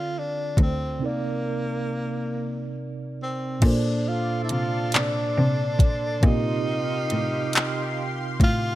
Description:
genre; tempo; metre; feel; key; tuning
slow six-eight R&B; 46 BPM (dotted quarters); 6/8; straight; Bb major; A4 = 440 Hz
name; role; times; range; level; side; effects
breathy tenor saxophone; melody; 0.0-8.8 s; Bb3 to F4; -29 LUFS; equal; none
mellow tine electric piano; accompaniment; 0.0-8.8 s; Bb2 to D5; -28 LUFS; right 3 dB; medium stereo tremolo
rich cello; bass; 0.0-8.8 s; D2 to C3; -26 LUFS; left 1 dB; none
smooth R&B drum kit; drums; 0.6-8.6 s; crash cymbal, handclaps, hi-hat, kick drum; -21 LUFS; equal; none
lush unison pad; sustained chords; 3.6-8.8 s; G4 to C6; -34 LUFS; equal; chorus, phaser
room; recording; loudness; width
little or no reverb; none; -22 LUFS; side -15 dB against mid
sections
0.0-3.6 A section; 3.6-8.8 B section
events
break 1.0-3.6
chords
0.0 Dm7; 1.0 Cm7; 3.6 Bbmaj9; 6.2 Eb69

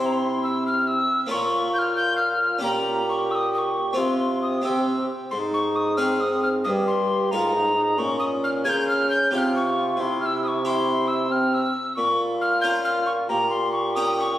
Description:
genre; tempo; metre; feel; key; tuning
classical, renaissance-style consort dance; 90 BPM (dotted quarters); 6/8; straight; unclear; A4 = 439 Hz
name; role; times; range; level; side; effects
mellow hollow soprano recorder; melody; 0.0-14.4 s; Bb5 to Ab6; -24 LUFS; left 1 dB; none
bright trombone; accompaniment; 0.0-14.4 s; C4 to G4; -27 LUFS; equal; none
harpsichord; accompaniment; 0.0-14.4 s; G2 to Bb4; -29 LUFS; equal; none
dark bassoon; bass; 0.0-14.4 s; G2 to Db3; -27 LUFS; equal; none
room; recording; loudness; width
wet recital hall reverb, RT60 1.6 s; recorded on a phone in the room, club reverb, compression; -20 LUFS; side -13 dB against mid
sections
0.0-5.3 A section; 5.3-14.4 A section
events
none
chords
0.0 C; 1.3 Bbm; 2.6 Gdim/Bb; 4.0 Csus4; 4.6 C; 5.3 Ab; 6.7 Eb/G; 8.0 Bbm; 9.3 Csus4; 10.0 C; 12.0 Bbm; 13.3 Gdim/Bb

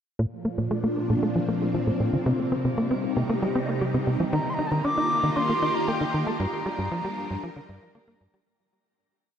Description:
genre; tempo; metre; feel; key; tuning
ambient, sequencer-driven space music; 116 BPM; 4/4; straight; Bb major; A4 = 440 Hz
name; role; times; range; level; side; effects
phased string machine; sustained chords; 0.2-8.5 s; Bb2 to Bb4; -27 LUFS; equal; ensemble chorus, phaser
tight sequencer bass; riff; 0.2-8.4 s; G2 to Eb4; -26 LUFS; equal; tape echo
wooden flute; melody; 4.3-7.9 s; G5 to D6; -27 LUFS; equal; tape echo
room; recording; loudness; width
wet shimmer reverb, RT60 7.5 s; dark, warm production; -23 LUFS; side -8 dB against mid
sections
0.2-8.5 A section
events
filter sweep on analog synth bass 0.2-8.5; fade-out 5.7-8.5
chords
0.2 Bb; 2.3 Cm; 4.3 Eb; 6.4 Gm

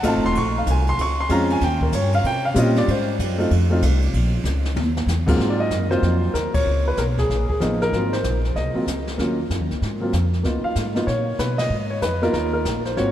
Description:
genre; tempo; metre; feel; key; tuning
jazz piano trio; 190 BPM; 4/4; swing 64% on 8ths; Ab mixolydian; A4 = 441 Hz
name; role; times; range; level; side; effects
warm baby grand piano; melody; 0.0-13.1 s; Ab2 to Db6; -21 LUFS; equal; none
upright bass; bass; 0.0-13.1 s; Eb1 to C3; -22 LUFS; equal; none
jazz brush drum kit; drums; 0.0-13.1 s; brushed snare drum, crash cymbal, hi-hat, kick drum, ride cymbal, snare drum, toms; -28 LUFS; equal; none
room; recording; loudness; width
moderate cathedral reverb, RT60 4.7 s; in a vast, echoing space; -18 LUFS; side -12 dB against mid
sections
0.0-5.4 A section; 5.4-13.1 B section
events
grand piano solo 0.0-5.4; drum fill 4.4-5.1; band accent 6.5, 11.5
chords
0.4 Bbm7; 1.6 Eb13; 2.9 Ab; 3.5 F5; 4.1 Bbm; 4.8 Eb5; 5.4 Ab13; 6.7 Db13; 7.9 Ab13; 9.2 Ebm7; 9.8 Ab5; 10.4 Db13

